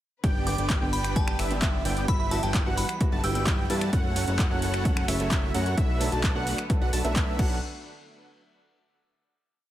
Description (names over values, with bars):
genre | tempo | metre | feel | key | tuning
EDM, festival progressive house | 130 BPM | 4/4 | straight | B minor | A4 = 440 Hz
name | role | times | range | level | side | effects
clear studio string section | sustained chords | 0.2-7.6 s | C#3 to B4 | -40 LUFS | left 1 dB | none
wide unison lead | arpeggios | 0.2-7.6 s | E5 to A5 | -34 LUFS | right 1 dB | sidechain pumping, tape echo
dense compressed supersaw | riff | 0.2-7.6 s | G3 to A5 | -33 LUFS | right 1 dB | sidechain pumping, tape echo
fat analog bass | bass | 0.2-7.6 s | F#1 to G2 | -30 LUFS | equal | sidechain pumping
big-room dance drum kit | drums | 0.2-7.5 s | crash cymbal, finger snaps, handclaps, hi-hat | -32 LUFS | equal | overdrive
electronic kick drum | drums | 0.2-7.5 s | none | -26 LUFS | equal | overdrive
glassy synth bell | melody | 0.5-3.4 s | A5 to E6 | -34 LUFS | equal | chorus, tape echo
warm baby grand piano | accompaniment | 0.5-7.6 s | D3 to A4 | -36 LUFS | right 3 dB | sidechain pumping, tape echo
room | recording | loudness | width
light reverb, digital ambience | none | -23 LUFS | side -13 dB against mid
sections
0.2-7.6 drop; 7.6-9.5 final hit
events
drop 0.2-7.6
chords
0.2 G; 2.1 Emadd9/G; 3.9 F#m; 5.8 Bm7; 7.6 N.C.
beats
| 0.24 0.70 1.16 1.62 | 2.08 2.54 3.01 3.47 | 3.93 4.39 4.85 5.31 | 5.78 6.24 6.70 7.16